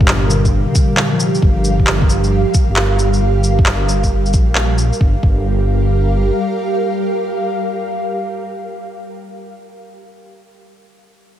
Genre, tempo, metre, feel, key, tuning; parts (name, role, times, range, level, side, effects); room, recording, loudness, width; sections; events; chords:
future garage; 134 BPM; 4/4; swing 66% on 16ths; G minor; A4 = 439 Hz
bell-like tine electric piano; accompaniment; 0.0-2.8 s; Bb2 to F3; -21 LUFS; left 2 dB; vintage 12-bit sampler grit, sidechain pumping, digital delay
ethereal airy pad; sustained chords; 0.0-9.3 s; G3 to F5; -20 LUFS; right 2 dB; ensemble chorus, built-in reverb, sidechain pumping
dark detuned saw bass; bass; 0.0-6.3 s; G1 to Bb1; -16 LUFS; equal
electronic kick drum; drums; 0.0-5.4 s; -14 LUFS; equal
electronic handclaps and shaker; drums; 0.1-5.0 s; -19 LUFS; equal
light reverb; -13 LUFS; side -11 dB against mid
0.0-5.0 A section; 5.0-8.6 B section
filter sweep on detuned saw bass 0.0-5.0
0.0 Gm7